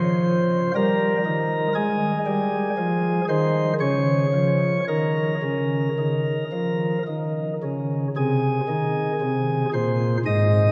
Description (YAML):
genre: classical, chorale-style piece for pipe organ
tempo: 55-60 BPM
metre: 3/4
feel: rubato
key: Ab major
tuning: A4 = 441 Hz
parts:
  - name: chamber organ, sparkling flutes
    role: solo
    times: 0.0-10.7 s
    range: Ab2 to Eb5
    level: -22 LUFS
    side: equal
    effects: none
room: wet cathedral reverb, RT60 5.0 s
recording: heard from further back in the room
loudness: -23 LUFS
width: mono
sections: 0.0-10.7 A section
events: none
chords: 0.0 N.C.; 0.7 Eb/G; 1.8 Ab5; 3.8 Db; 4.9 Eb5; 7.1 Dbsus2; 8.1 Ab/C